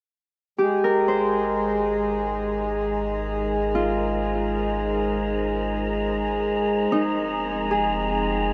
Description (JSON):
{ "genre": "ambient", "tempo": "76 BPM", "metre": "4/4", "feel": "straight", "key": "Ab major", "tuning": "A4 = 437 Hz", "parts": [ { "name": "warbly tape-like pad", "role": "sustained chords", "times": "2.3-8.5 s", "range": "F3 to G5", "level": "-35 LUFS", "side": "equal", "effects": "chorus, built-in reverb, phaser" }, { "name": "Celtic harp", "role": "arpeggios", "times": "0.6-8.5 s", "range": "Eb4 to C5", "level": "-28 LUFS", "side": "equal", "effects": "tape echo" }, { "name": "warm sub bass", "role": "bass", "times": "0.6-8.5 s", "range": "F1 to Ab1", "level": "-35 LUFS", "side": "equal", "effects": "none" }, { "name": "pedal harmonium", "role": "drone", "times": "0.6-8.5 s", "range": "Ab3", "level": "-27 LUFS", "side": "equal", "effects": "none" }, { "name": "wind-like tuned noise texture", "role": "texture", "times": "2.2-8.5 s", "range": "Bb5", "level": "-36 LUFS", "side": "equal", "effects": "built-in reverb" } ], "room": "wet huge ambient reverb, RT60 8.6 s", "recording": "in a vast, echoing space", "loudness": "-24 LUFS", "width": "mono", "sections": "0.6-8.5 A section", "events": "fade-in on ambient pad 0.6-8.5; fade-in on sub bass 0.6-8.5; fade-in on synth texture 0.6-8.5", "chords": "0.6 Abmaj7; 6.9 Fm7", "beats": "| 0.60 1.39 2.18 2.97 | 3.76 4.55 5.34 6.12 | 6.92 7.70 8.49" }